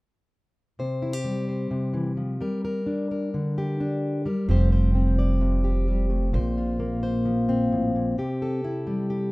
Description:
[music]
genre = indie folk with a building arrangement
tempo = 130 BPM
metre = 4/4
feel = straight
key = C mixolydian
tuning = A4 = 440 Hz
[part]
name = fingerpicked plugged-in steel-string acoustic guitar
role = accompaniment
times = 0.8-9.3 s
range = A2 to D5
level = -25 LUFS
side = left 1 dB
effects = none
[part]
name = upright bass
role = bass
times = 4.5-8.1 s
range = F1 to Bb1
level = -23 LUFS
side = right 1 dB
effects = none
[sound]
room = light reverb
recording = rough home demo mix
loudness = -23 LUFS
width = side -22 dB against mid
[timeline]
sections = 0.8-8.2 A section; 8.2-9.3 B section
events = none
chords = 0.8 C; 2.4 Gm; 4.5 Fsus2; 6.3 Bbsus2; 8.2 C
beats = | 0.79 1.25 1.72 2.18 | 2.64 3.10 3.56 4.03 | 4.49 4.95 5.41 5.87 | 6.33 6.79 7.26 7.72 | 8.18 8.64 9.10

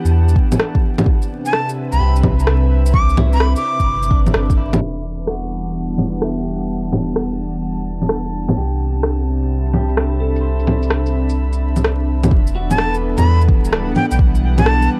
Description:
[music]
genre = future garage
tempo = 128 BPM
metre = 4/4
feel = swing 67% on 16ths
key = E minor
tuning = A4 = 441 Hz
[part]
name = airy breathy pad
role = sustained chords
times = 0.0-15.0 s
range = C3 to B5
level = -26 LUFS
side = equal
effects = chorus, sidechain pumping
[part]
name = warm sub bass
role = bass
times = 0.0-14.9 s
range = D1 to E2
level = -20 LUFS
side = equal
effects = sidechain pumping
[part]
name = electronic shaker, bongos and rim click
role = drums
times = 0.1-14.9 s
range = none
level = -21 LUFS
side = equal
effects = overdrive, low-pass filter on perc, low-pass filter on snare, low-pass filter on room
[part]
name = electronic kick drum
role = drums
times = 0.4-4.6, 12.3-14.3 s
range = none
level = -17 LUFS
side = equal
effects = overdrive
[part]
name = breathy bright jazz flute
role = melody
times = 1.5-4.2, 12.7-14.9 s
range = G5 to D6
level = -25 LUFS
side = equal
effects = tape echo
[part]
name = electric guitar at the edge of break-up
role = accompaniment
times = 2.0-14.3 s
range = D4 to C5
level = -32 LUFS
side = equal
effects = vintage 12-bit sampler grit, sidechain pumping, delay
[part]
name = drifting glass-harmonics texture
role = texture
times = 5.9-12.3 s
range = A5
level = -40 LUFS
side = equal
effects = chorus, built-in reverb
[sound]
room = little or no reverb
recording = dark, warm production, vinyl crackle, low-pass filter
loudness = -17 LUFS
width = mono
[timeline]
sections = 0.0-4.8 A section; 4.8-12.3 B section; 12.3-15.0 C section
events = band accent 4.3; filter sweep on drum 4.8-12.3; filter sweep on analog synth pad 4.8-12.3; filter sweep 4.8-12.3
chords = 0.0 Em7; 1.1 Cmaj7; 4.8 Em7; 8.6 Cmaj7; 12.3 Em7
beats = 0.13 0.59 | 1.06 1.53 2.00 2.47 | 2.94 3.41 3.88 4.34 | 4.81 5.28 5.75 6.22 | 6.69 7.16 7.63 8.10 | 8.56 9.03 9.50 9.97 | 10.44 10.91 11.38 11.85 | 12.31 12.78 13.25 13.72 | 14.19 14.66

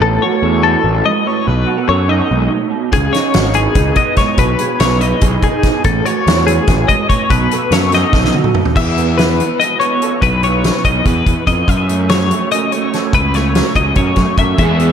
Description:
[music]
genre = math rock and midwest emo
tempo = 288 BPM (eighths)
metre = 7/8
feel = straight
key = E major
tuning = A4 = 440 Hz
[part]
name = electric guitar through a small old amp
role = accompaniment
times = 0.0-14.9 s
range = E2 to C#5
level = -19 LUFS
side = right 9 dB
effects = ensemble chorus
[part]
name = twelve-string electric guitar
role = arpeggios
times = 0.0-14.9 s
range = G#4 to E5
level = -16 LUFS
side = left 6 dB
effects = tremolo, diffuse ambient delay
[part]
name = fuzz picked electric bass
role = bass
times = 0.0-14.9 s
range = G#1 to F#2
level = -16 LUFS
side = equal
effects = overdrive
[part]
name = loose indie drum kit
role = drums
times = 2.9-14.9 s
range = crash cymbal, hi-hat, kick drum, snare drum, toms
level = -16 LUFS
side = equal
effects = none
[part]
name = crunchy overdriven guitar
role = riff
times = 14.6-14.9 s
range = E3 to G#4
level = -16 LUFS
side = right 2 dB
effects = ensemble chorus
[sound]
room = moderate lush hall reverb, RT60 2.1 s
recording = dreamy mix soaked in reverb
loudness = -11 LUFS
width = side -8 dB against mid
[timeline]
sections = 0.0-8.8 A section; 8.8-14.9 B section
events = drum fill 8.1-8.8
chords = 0.0 A6; 1.5 B9; 2.9 C#m9; 4.4 Emaj7/B; 5.8 A6; 7.3 B9; 8.8 E5; 11.7 F#m7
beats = | 0.02 0.23 0.44 0.64 0.85 1.06 1.27 | 1.48 1.69 1.89 2.10 2.31 2.52 2.73 | 2.93 3.14 3.35 3.56 3.77 3.97 4.18 | 4.39 4.60 4.81 5.01 5.22 5.43 5.64 | 5.85 6.05 6.26 6.47 6.68 6.89 7.10 | 7.30 7.51 7.72 7.93 8.14 8.35 8.55 | 8.76 8.97 9.18 9.39 9.60 9.80 10.01 | 10.22 10.43 10.64 10.84 11.05 11.26 11.47 | 11.68 11.88 12.09 12.30 12.51 12.72 12.92 | 13.13 13.34 13.55 13.76 13.96 14.17 14.38 | 14.59 14.79

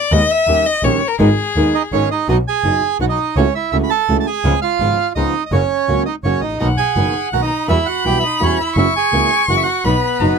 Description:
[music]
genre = tango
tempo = 166 BPM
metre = 3/4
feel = rubato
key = B major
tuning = A4 = 439 Hz
[part]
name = rich violin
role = second line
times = 0.0-2.1, 6.6-10.4 s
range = G#4 to C#6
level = -18 LUFS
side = left 4 dB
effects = none
[part]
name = flamenco guitar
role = accompaniment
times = 0.1-10.4 s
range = B2 to A#4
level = -19 LUFS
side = right 1 dB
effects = none
[part]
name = clear double bass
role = bass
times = 0.1-10.4 s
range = F#1 to E2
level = -19 LUFS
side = equal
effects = none
[part]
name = bandoneon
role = melody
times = 1.7-10.4 s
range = B3 to B5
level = -18 LUFS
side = right 7 dB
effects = none
[sound]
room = little or no reverb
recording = close, detailed microphones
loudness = -14 LUFS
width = side -6 dB against mid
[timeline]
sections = 0.0-2.3 A section; 2.3-10.4 B section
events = violin solo 0.0-2.3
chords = 0.1 G#m/D#; 0.5 D#7; 1.2 G#madd9; 2.3 B; 3.4 A6/C#; 4.4 C#7; 5.5 F#; 6.6 Bmaj7; 7.7 Emadd9; 8.8 F#7; 9.8 B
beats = | 0.11 0.47 0.83 | 1.19 1.55 1.91 | 2.28 2.64 3.00 | 3.36 3.72 4.08 | 4.44 4.80 5.16 | 5.52 5.88 6.24 | 6.60 6.96 7.33 | 7.68 8.04 8.40 | 8.76 9.12 9.48 | 9.84 10.21

